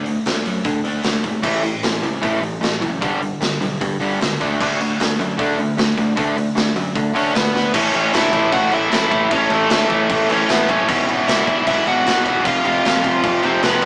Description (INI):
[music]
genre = punk rock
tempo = 152 BPM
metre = 4/4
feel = straight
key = A major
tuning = A4 = 440 Hz
[part]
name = distorted electric guitar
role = riff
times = 0.0-13.9 s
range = E2 to D4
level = -25 LUFS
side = equal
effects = none
[part]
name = modern bright picked electric bass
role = bass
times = 0.0-13.9 s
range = F1 to D3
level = -26 LUFS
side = equal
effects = none
[part]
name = raw garage drum kit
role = drums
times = 0.1-13.9 s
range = crash cymbal, hi-hat, kick drum, snare drum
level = -21 LUFS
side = equal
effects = none
[part]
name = distorted electric guitar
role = riff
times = 1.4-13.9 s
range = E2 to D4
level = -19 LUFS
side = equal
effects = distortion
[part]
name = overdriven electric guitar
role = melody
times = 7.2-13.9 s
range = A3 to F#5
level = -18 LUFS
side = equal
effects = none
[sound]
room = light reverb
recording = band playing live in one room, small speaker sound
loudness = -15 LUFS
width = side -34 dB against mid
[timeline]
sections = 0.0-7.7 A section; 7.7-13.9 B section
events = drum fill 7.5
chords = 0.0 D5; 1.4 A5; 3.0 G5; 4.4 D5; 7.7 A; 10.9 E/G#; 12.5 F5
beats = 0.26 0.65 1.04 | 1.44 1.83 2.23 2.62 | 3.02 3.41 3.80 4.20 | 4.59 4.99 5.38 5.78 | 6.17 6.56 6.96 7.35 | 7.74 8.14 8.53 8.92 | 9.31 9.71 10.10 10.49 | 10.88 11.28 11.67 12.06 | 12.45 12.85 13.24 13.63